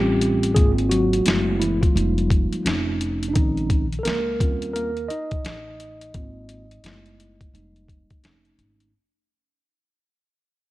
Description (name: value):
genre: hip hop, jazz-hop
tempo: 86 BPM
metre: 4/4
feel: swing 63% on 16ths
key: F minor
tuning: A4 = 441 Hz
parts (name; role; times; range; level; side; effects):
- mellow tine electric piano; accompaniment; 0.0-8.9 s; Eb3 to Eb5; -23 LUFS; right 1 dB; slow stereo tremolo
- upright bass; bass; 0.0-8.9 s; F1 to Eb2; -26 LUFS; equal; none
- boom bap sampler-style drum kit; drums; 0.2-8.9 s; hi-hat, kick drum, snare drum; -22 LUFS; equal; none
room: little or no reverb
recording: dark, warm production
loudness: -19 LUFS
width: side -17 dB against mid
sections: 0.0-8.9 A section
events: fade-out 0.0-8.9; tine electric piano solo 0.0-8.9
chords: 0.0 Eb13 (rootless); 0.6 Ab69; 1.3 Gbm11; 2.0 Fm11; 2.7 Faug7; 3.4 Bbm11; 4.4 Eb13; 6.1 Ab69; 6.8 Gbm11; 7.5 Fm11; 8.2 F7alt